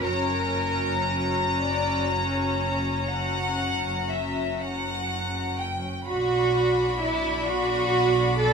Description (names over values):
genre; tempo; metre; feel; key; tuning
classical, slow romantic movement for string orchestra; 38-44 BPM (dotted quarters); 12/8; rubato; B minor; A4 = 435 Hz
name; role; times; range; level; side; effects
warm studio violin section; melody; 0.0-8.5 s; E5 to A#5; -30 LUFS; left 4 dB; none
rich studio violin section; second line; 0.0-8.5 s; A#4 to B5; -30 LUFS; left 3 dB; none
warm studio viola section; accompaniment; 0.0-8.5 s; C#4 to F#4; -30 LUFS; equal; none
warm studio cello section; bass; 0.0-8.5 s; F#2 to A4; -27 LUFS; right 2 dB; none
warm studio double bass section; bass; 0.0-8.5 s; F#1 to B1; -33 LUFS; right 2 dB; none
room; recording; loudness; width
moderate studio reverb, RT60 0.6 s; minimal, uncompressed stereo recording; -23 LUFS; side -5 dB against mid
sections
0.0-6.1 A section; 6.1-8.5 B section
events
none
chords
0.0 F#; 6.1 Bm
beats
| 0.04 1.60 3.12 4.60 | 6.08 7.47